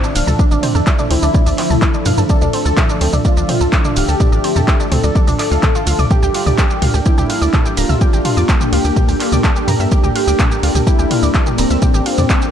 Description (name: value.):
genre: melodic techno.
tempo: 126 BPM.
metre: 4/4.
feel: straight.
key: D minor.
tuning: A4 = 440 Hz.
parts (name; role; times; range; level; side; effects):
wide unison lead; melody; 0.0-12.4 s; C4 to A4; -21 LUFS; left 1 dB; wide subtle chorus, sidechain pumping, tape echo.
warm analog pad; sustained chords; 0.0-12.5 s; D3 to E5; -25 LUFS; right 1 dB; lush chorus, sidechain pumping.
analog pluck; arpeggios; 0.0-12.5 s; C4 to Bb6; -24 LUFS; right 1 dB; chorus, cassette tape, sidechain pumping, digital delay.
punchy analog drum machine; drums; 0.0-12.5 s; handclaps, hi-hat, ride cymbal, shaker, toms; -20 LUFS; equal; sidechain pumping on hats, sidechain pumping on perc, sidechain pumping on toms, sidechain pumping on cymbals.
ethereal airy pad; texture; 0.0-12.5 s; F3 to G5; -22 LUFS; equal; ensemble chorus, built-in reverb, phaser, sidechain pumping.
tight sequencer bass; bass; 0.2-12.2 s; D1 to G2; -16 LUFS; equal; sidechain pumping.
electronic kick drum; drums; 0.4-12.4 s; none; -14 LUFS; equal; overdrive.
room: light reverb, digital ambience.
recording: dark, warm production.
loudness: -12 LUFS.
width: side -9 dB against mid.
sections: 0.0-12.5 A section.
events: none.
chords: 0.0 Dmadd9; 6.1 Gm/D.